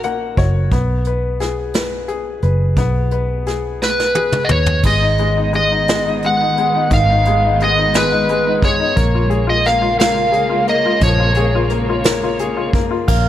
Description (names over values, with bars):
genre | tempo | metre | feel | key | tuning
six-eight pop ballad | 58 BPM (dotted quarters) | 6/8 | straight | unclear | A4 = 439 Hz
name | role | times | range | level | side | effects
bright upright piano | accompaniment | 0.0-13.3 s | Eb3 to Gb5 | -21 LUFS | left 6 dB | none
vintage muted fingered electric bass | bass | 0.0-13.3 s | Gb1 to Eb2 | -18 LUFS | right 1 dB | none
vintage brush drum kit | drums | 0.0-13.2 s | crash cymbal, hi-hat, kick drum, snare drum, toms | -19 LUFS | right 1 dB | none
overdriven slide guitar | melody | 3.8-12.7 s | Cb5 to Gb5 | -16 LUFS | right 1 dB | none
warm studio string section | sustained chords | 4.8-13.3 s | Db3 to Cb4 | -23 LUFS | right 2 dB | none
concert harp | second line | 13.1-13.3 s | F5 | -20 LUFS | right 2 dB | none
room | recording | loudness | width
light reverb, small room ambience | none | -13 LUFS | side -12 dB against mid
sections
0.0-4.8 A section; 4.8-13.1 B section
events
upright piano fill 0.0-0.7; drum fill 3.8-4.8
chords
0.0 Gb; 0.7 Abm; 9.0 Bbm7